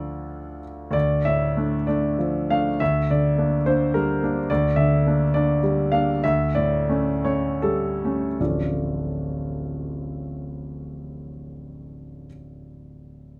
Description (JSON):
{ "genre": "classical, romantic character piece for solo piano", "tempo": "48-74 BPM (dotted quarters)", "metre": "6/8", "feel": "rubato", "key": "D minor", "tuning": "A4 = 439 Hz", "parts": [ { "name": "warm concert grand piano", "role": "solo", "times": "0.0-13.4 s", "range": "D1 to F5", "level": "-24 LUFS", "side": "equal", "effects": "none" } ], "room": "light reverb", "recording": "none", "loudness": "-23 LUFS", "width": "mono", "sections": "0.9-8.4 A section; 8.4-12.2 B section", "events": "slowing down 3.7-8.4", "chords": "0.0 Dm; 2.8 Gm/D; 6.2 A7/D; 8.4 Dm" }